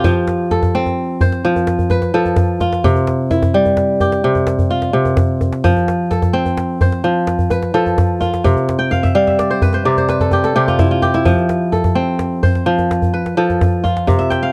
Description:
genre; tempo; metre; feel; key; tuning
west african traditional, West African string and xylophone music; 86 BPM (dotted quarters); 12/8; straight; F lydian; A4 = 440 Hz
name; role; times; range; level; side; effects
kora; arpeggios; 0.0-14.5 s; C3 to G5; -17 LUFS; equal; none
djembe; percussion; 0.0-14.4 s; none; -20 LUFS; equal; none
room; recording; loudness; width
light reverb; dark, warm production; -16 LUFS; mono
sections
0.0-14.5 A section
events
kora fill 8.8-11.3, 14.2-14.5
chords
0.0 F; 2.8 C; 5.6 F; 8.4 C5; 11.3 F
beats
| 0.04 0.74 1.44 2.14 | 2.84 3.54 4.24 4.94 | 5.64 6.34 7.04 7.75 | 8.45 9.15 9.85 10.55 | 11.26 11.96 12.66 13.37 | 14.07

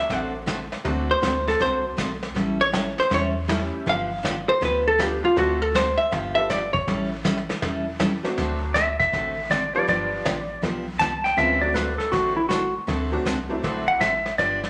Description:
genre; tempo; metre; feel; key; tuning
country, western swing; 160 BPM; 4/4; swing 65% on 8ths; D mixolydian; A4 = 440 Hz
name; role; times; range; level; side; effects
vintage hollow-body jazz guitar; melody; 0.0-7.1 s; F4 to F#5; -24 LUFS; equal; none
tack piano; accompaniment; 0.0-14.0 s; F3 to A4; -33 LUFS; equal; none
picked steel-string acoustic guitar; accompaniment; 0.1-14.6 s; D3 to A4; -31 LUFS; equal; none
metallic FM bass; bass; 0.1-14.7 s; E1 to E2; -35 LUFS; equal; none
vintage brush drum kit; drums; 0.1-14.7 s; brushed snare drum, hi-hat, kick drum, snare drum; -32 LUFS; equal; none
clean lap steel guitar; second line; 8.7-14.7 s; E4 to A5; -24 LUFS; equal; none
room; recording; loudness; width
wet large studio reverb, RT60 1.2 s; none; -23 LUFS; mono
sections
0.0-8.4 A section; 8.4-14.7 A section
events
hollow-body jazz guitar solo 0.0-8.4; electric slide guitar solo 8.4-14.7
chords
0.0 D7; 2.4 A7; 3.9 G7; 5.4 D7; 6.1 G7; 6.9 A7; 8.4 D7; 9.9 G7; 11.4 D7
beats
0.10 0.47 | 0.85 1.23 1.60 1.98 | 2.36 2.73 3.11 3.49 | 3.86 4.24 4.61 4.99 | 5.37 5.74 6.12 6.49 | 6.87 7.25 7.62 8.00 | 8.37 8.75 9.12 9.50 | 9.88 10.25 10.63 11.00 | 11.38 11.75 12.13 12.51 | 12.88 13.26 13.63 14.01 | 14.38

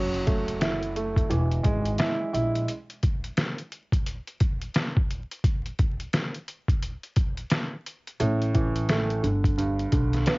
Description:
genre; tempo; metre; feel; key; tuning
hip hop, boom-bap hip-hop; 87 BPM; 4/4; swing 62% on 16ths; F# minor; A4 = 441 Hz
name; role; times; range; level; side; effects
warm upright piano; accompaniment; 0.0-2.7, 8.2-10.4 s; G2 to E4; -27 LUFS; right 2 dB; cassette tape, high-pass filter, low-pass filter
upright bass; bass; 0.0-2.6, 8.2-10.2 s; E1 to B1; -27 LUFS; equal; none
trip hop sampler-style drum kit; drums; 0.1-10.4 s; hi-hat, kick drum, snare drum; -25 LUFS; equal; cassette tape
room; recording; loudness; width
light reverb; home recording on cassette, vinyl crackle, nothing above 7.6 kHz; -24 LUFS; side -24 dB against mid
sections
0.0-10.4 A section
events
break 2.7-8.2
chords
0.0 F#m7; 1.3 E; 2.7 N.C.; 8.2 A5; 9.2 G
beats
0.61 1.30 1.99 | 2.68 3.37 4.06 4.75 | 5.44 6.13 6.82 7.51 | 8.20 8.89 9.58 10.27

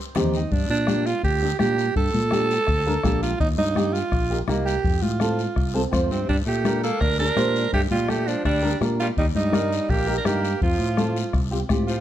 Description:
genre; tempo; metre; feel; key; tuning
latin, cumbia; 166 BPM; 4/4; straight; G minor; A4 = 440 Hz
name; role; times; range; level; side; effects
flamenco guitar; accompaniment; 0.2-12.0 s; Bb3 to C5; -27 LUFS; equal; none
fingered electric bass; bass; 0.2-12.0 s; Bb1 to Bb2; -25 LUFS; equal; none
bombo; percussion; 0.2-11.9 s; none; -26 LUFS; left 1 dB; none
congas; percussion; 0.2-11.9 s; none; -29 LUFS; left 3 dB; none
guiro; percussion; 0.2-12.0 s; none; -38 LUFS; left 9 dB; none
raspy alto saxophone; melody; 0.4-12.0 s; C4 to Bb4; -25 LUFS; right 4 dB; none
clear tenor saxophone; second line; 6.1-12.0 s; C3 to D4; -32 LUFS; left 5 dB; none
room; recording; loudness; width
light reverb; none; -20 LUFS; side -11 dB against mid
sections
0.5-12.0 A section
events
none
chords
0.0 Cm; 0.5 Gmadd9; 3.4 Eb; 4.8 F; 6.3 Gmadd9; 9.2 Eb; 10.6 Fadd9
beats
0.16 | 0.52 0.88 1.24 1.60 | 1.96 2.32 2.68 3.04 | 3.40 3.76 4.12 4.48 | 4.84 5.20 5.57 5.92 | 6.29 6.65 7.01 7.37 | 7.73 8.09 8.45 8.81 | 9.17 9.53 9.89 10.25 | 10.61 10.97 11.33 11.69

